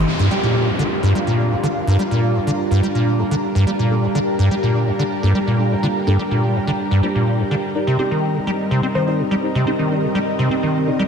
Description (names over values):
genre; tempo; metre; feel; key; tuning
house; 125 BPM; 4/4; straight; G minor; A4 = 439 Hz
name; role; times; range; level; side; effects
string machine, full ensemble; sustained chords; 0.0-11.1 s; G3 to Bb4; -23 LUFS; right 1 dB; phaser, ensemble chorus
ethereal airy pad; texture; 0.0-11.1 s; C4 to C6; -26 LUFS; equal; ensemble chorus, built-in reverb
deep mellow chord stab; stabs; 0.1-11.0 s; Bb3 to D5; -30 LUFS; left 1 dB; none
downlifter; sound effects; 0.1-3.9 s; none; -26 LUFS; equal; none
acid bass, square; riff; 0.2-11.0 s; G2 to C4; -18 LUFS; equal; tube saturation, wide subtle chorus, diffuse ambient delay
plucky unison lead; melody; 0.3-0.7, 8.0-9.1 s; G4 to C5; -27 LUFS; equal; lush chorus, vintage 12-bit sampler grit, ping-pong delay
room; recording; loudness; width
moderate plate reverb, RT60 2.2 s; dreamy mix soaked in reverb; -16 LUFS; side -7 dB against mid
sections
0.1-11.1 A section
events
none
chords
0.1 Gm7; 7.8 Cm7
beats
| 0.07 0.55 1.03 1.51 | 1.99 2.47 2.95 3.43 | 3.91 4.39 4.87 5.35 | 5.83 6.31 6.79 7.27 | 7.75 8.23 8.71 9.19 | 9.67 10.15 10.63